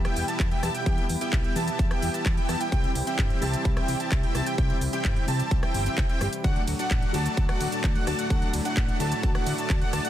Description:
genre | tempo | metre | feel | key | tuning
EDM, festival progressive house | 129 BPM | 4/4 | straight | unclear | A4 = 444 Hz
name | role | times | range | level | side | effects
dark baby grand piano | accompaniment | 0.0-10.1 s | C3 to G4 | -34 LUFS | left 3 dB | sidechain pumping, dub echo
lush unison pad | sustained chords | 0.0-10.1 s | A2 to G4 | -36 LUFS | right 1 dB | chorus, sidechain pumping
wide unison lead | arpeggios | 0.0-10.1 s | F#5 to A5 | -32 LUFS | right 1 dB | lush chorus, sidechain pumping, dub echo
dense compressed supersaw | riff | 0.0-10.1 s | A3 to A5 | -32 LUFS | equal | sidechain pumping, dub echo
fat analog bass | bass | 0.0-10.0 s | G1 to E2 | -30 LUFS | equal | sidechain pumping
pop drum kit | drums | 0.0-10.1 s | cabasa, handclaps, hi-hat, ride cymbal, rim click | -34 LUFS | equal | none
electronic kick drum | drums | 0.4-9.8 s | none | -25 LUFS | equal | overdrive
room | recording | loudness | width
little or no reverb | dense, heavily limited modern master | -23 LUFS | side -12 dB against mid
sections
0.0-10.1 A section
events
none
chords
0.0 Em; 2.7 C; 6.4 D

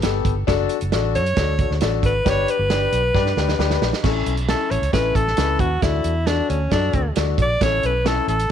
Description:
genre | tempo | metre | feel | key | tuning
uptempo 1960s-style soul | 135 BPM | 4/4 | straight | A mixolydian | A4 = 438 Hz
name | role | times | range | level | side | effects
warm concert grand piano | accompaniment | 0.0-8.3 s | B3 to B4 | -24 LUFS | left 14 dB | none
vintage muted fingered electric bass | bass | 0.0-8.5 s | F#1 to G2 | -23 LUFS | right 1 dB | none
warm soul drum kit | drums | 0.0-8.5 s | crash cymbal, hi-hat, kick drum, snare drum | -23 LUFS | right 4 dB | none
bright alto saxophone | melody | 1.2-8.5 s | C#4 to D5 | -22 LUFS | equal | none
room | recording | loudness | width
light reverb, small room ambience | 1960s-style stereo | -17 LUFS | side -9 dB against mid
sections
0.0-4.0 A section; 4.0-8.5 B section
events
drum fill 3.2-4.0; alto saxophone solo 4.0-8.5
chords
0.5 D/F#; 2.3 G; 4.0 A; 5.8 D; 7.6 A

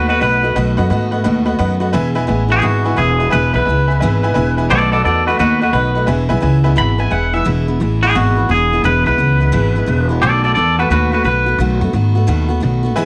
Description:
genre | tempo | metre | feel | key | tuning
rockabilly | 174 BPM | 4/4 | swing 64% on 8ths | E major | A4 = 440 Hz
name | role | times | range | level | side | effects
twangy electric guitar | melody | 0.0-11.6 s | F#4 to B5 | -18 LUFS | equal | tape echo
picked steel-string acoustic guitar | accompaniment | 0.0-13.1 s | E2 to F#4 | -22 LUFS | equal | none
upright bass | bass | 0.0-13.1 s | E1 to G#2 | -18 LUFS | equal | none
honky-tonk upright piano | accompaniment | 0.1-7.4, 13.0-13.1 s | B4 to B5 | -24 LUFS | equal | none
room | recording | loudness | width
light reverb | none | -15 LUFS | mono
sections
0.0-7.5 A section; 7.5-13.1 A section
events
honky-tonk piano fill 4.0-4.7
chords
0.0 B7; 1.9 E; 4.7 B7; 6.1 E; 10.2 B7

